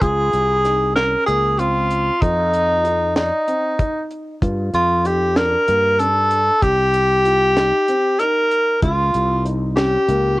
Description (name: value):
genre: progressive instrumental, band music in an uneven meter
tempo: 191 BPM (eighths)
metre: 7/8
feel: straight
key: unclear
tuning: A4 = 439 Hz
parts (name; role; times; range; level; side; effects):
- warm tenor saxophone; melody; 0.0-10.4 s; Eb4 to Bb4; -16 LUFS; equal; cassette tape, plate reverb
- dark grand piano; arpeggios; 0.0-10.3 s; Bb3 to D5; -28 LUFS; equal; cassette tape
- sustaining fretless electric bass; bass; 0.0-10.4 s; C2 to G2; -22 LUFS; equal; lush chorus
- deep reggae drum kit; drums; 0.0-10.2 s; hi-hat, kick drum, snare drum; -22 LUFS; equal; cassette tape
room: light reverb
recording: home recording on cassette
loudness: -15 LUFS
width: side -19 dB against mid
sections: 0.0-10.4 A section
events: none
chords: 0.0 Dbmaj7; 2.2 F5; 4.4 Gm7; 6.6 Cm7; 8.8 Dbmaj7